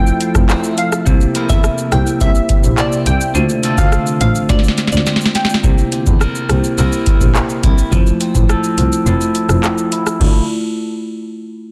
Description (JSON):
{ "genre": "dancehall", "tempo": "105 BPM", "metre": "4/4", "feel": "straight", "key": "unclear", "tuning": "A4 = 440 Hz", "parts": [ { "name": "glassy wavetable pluck", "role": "melody", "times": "0.0-5.5 s", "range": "D5 to G5", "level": "-24 LUFS", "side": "equal", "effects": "chorus, tape echo" }, { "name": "marimba with medium mallets", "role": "accompaniment", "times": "0.0-10.4 s", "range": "A3 to D5", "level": "-22 LUFS", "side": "equal", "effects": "sidechain pumping, low-pass filter" }, { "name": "glassy FM pad", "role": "sustained chords", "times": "0.0-5.6 s", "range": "C3 to E5", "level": "-29 LUFS", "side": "equal", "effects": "none" }, { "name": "electric guitar at the edge of break-up", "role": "arpeggios", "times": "0.0-10.9 s", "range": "C3 to Bb4", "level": "-25 LUFS", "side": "equal", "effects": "low-pass filter" }, { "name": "booming analog drum machine", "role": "drums", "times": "0.1-10.4 s", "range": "crash cymbal, handclaps, hi-hat, kick drum, rim click, shaker, snare drum", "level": "-17 LUFS", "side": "equal", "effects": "none" }, { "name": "bright double bass", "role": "bass", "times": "0.3-10.3 s", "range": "F1 to E2", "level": "-20 LUFS", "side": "equal", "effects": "none" } ], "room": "digital ambience", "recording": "dense, heavily limited modern master", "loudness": "-14 LUFS", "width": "mono", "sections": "0.0-5.6 A section; 5.6-10.2 B section; 10.2-11.7 C section", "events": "drum fill 4.5-5.6; filter sweep 5.6-10.2; kick muted 9.1-10.2", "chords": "0.0 Fmaj7; 1.1 C7; 3.4 Dm7; 5.6 C7; 7.9 Fmaj7; 10.2 Dmadd9" }